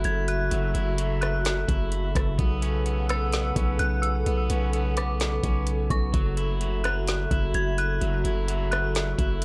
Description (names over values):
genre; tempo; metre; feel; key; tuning
hip hop, atmospheric cloud-rap; 128 BPM; 4/4; half-time; F# minor; A4 = 440 Hz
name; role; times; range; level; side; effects
dark detuned synth bell; melody; 0.0-9.4 s; C#6 to G#6; -35 LUFS; equal; chorus, digital delay
dark analog pad; sustained chords; 0.0-9.4 s; C#3 to F#5; -33 LUFS; equal; chorus, sidechain pumping
electric guitar at the edge of break-up; arpeggios; 0.0-9.4 s; F#3 to E4; -38 LUFS; equal; digital delay
long sustained 808-style bass; bass; 0.0-9.4 s; F#1 to B1; -29 LUFS; equal; none
smooth R&B drum kit; drums; 0.0-9.4 s; hi-hat, kick drum, rim click, snare drum; -30 LUFS; equal; none
room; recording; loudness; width
little or no reverb; none; -26 LUFS; mono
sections
0.0-9.4 A section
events
none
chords
0.0 F#m7; 2.4 Bm9; 6.1 F#m7